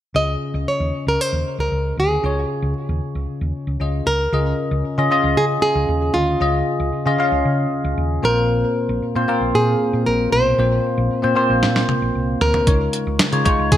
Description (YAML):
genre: 1980s-style pop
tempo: 115 BPM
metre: 4/4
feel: straight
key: Db major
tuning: A4 = 443 Hz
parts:
  - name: bell-like tine electric piano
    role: accompaniment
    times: 0.1-13.8 s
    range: Bb2 to F5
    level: -21 LUFS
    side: left 1 dB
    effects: analog chorus
  - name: hollow-body short-scale fingered electric bass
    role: bass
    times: 0.1-13.8 s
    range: Bb1 to Db3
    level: -22 LUFS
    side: equal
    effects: none
  - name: nylon-string guitar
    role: melody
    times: 0.2-13.8 s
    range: F4 to Eb5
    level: -21 LUFS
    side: equal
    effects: tape echo
  - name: clean 12-bit digital drum machine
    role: drums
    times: 11.6-13.8 s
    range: hi-hat, kick drum, snare drum, toms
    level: -18 LUFS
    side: right 1 dB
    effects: none
room: light reverb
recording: none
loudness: -17 LUFS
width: side -11 dB against mid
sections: 0.2-4.3 A section; 4.3-13.8 B section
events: drum fill 11.6-12.7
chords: 0.2 Dbadd9; 4.1 Bbm/Db; 4.3 Dbadd9; 8.2 Bbsus2; 12.7 Dbadd9